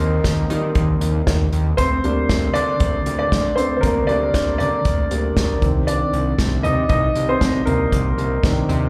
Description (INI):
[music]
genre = piano-driven pop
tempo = 117 BPM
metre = 4/4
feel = swing 56% on 16ths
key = unclear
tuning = A4 = 439 Hz
[part]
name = warm baby grand piano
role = accompaniment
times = 0.0-8.9 s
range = Eb3 to Eb5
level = -22 LUFS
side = equal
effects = slapback echo
[part]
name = fat analog bass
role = bass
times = 0.0-8.9 s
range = C2 to Eb3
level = -23 LUFS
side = equal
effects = none
[part]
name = downlifter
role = sound effects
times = 0.0-1.8 s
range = none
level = -45 LUFS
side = equal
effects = none
[part]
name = unplugged drum kit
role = drums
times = 0.2-8.8 s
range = hi-hat, kick drum, snare drum, toms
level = -24 LUFS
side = equal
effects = none
[sound]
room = studio reverb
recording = live gig heard through the venue's PA, club reverb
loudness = -19 LUFS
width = mono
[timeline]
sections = 0.0-8.9 A section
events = grand piano solo 0.0-8.9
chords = 0.0 Eb; 1.8 Gm/D; 5.6 Cmadd9